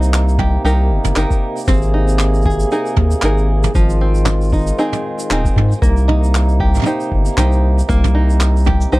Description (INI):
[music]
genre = folktronica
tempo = 116 BPM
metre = 4/4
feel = swing 56% on 16ths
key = C minor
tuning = A4 = 440 Hz
[part]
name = mellow accordion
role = sustained chords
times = 0.0-9.0 s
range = C3 to Ab4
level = -23 LUFS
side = right 1 dB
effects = none
[part]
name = open-back banjo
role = arpeggios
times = 0.0-9.0 s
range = F3 to C5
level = -21 LUFS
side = equal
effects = tape echo
[part]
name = round analog bass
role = bass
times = 0.0-9.0 s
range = Eb1 to Ab2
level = -14 LUFS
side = equal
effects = none
[part]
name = vintage brush drum kit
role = drums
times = 0.0-9.0 s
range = handclaps, shaker, toms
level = -23 LUFS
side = right 2 dB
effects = none
[part]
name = electronic kick drum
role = drums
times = 0.4-8.8 s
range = none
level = -17 LUFS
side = equal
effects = none
[sound]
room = little or no reverb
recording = none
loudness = -12 LUFS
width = side -20 dB against mid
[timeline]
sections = 0.0-9.0 A section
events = none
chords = 0.0 Cm7; 1.7 Abadd9; 3.7 Fm7/Ab; 5.8 Cm7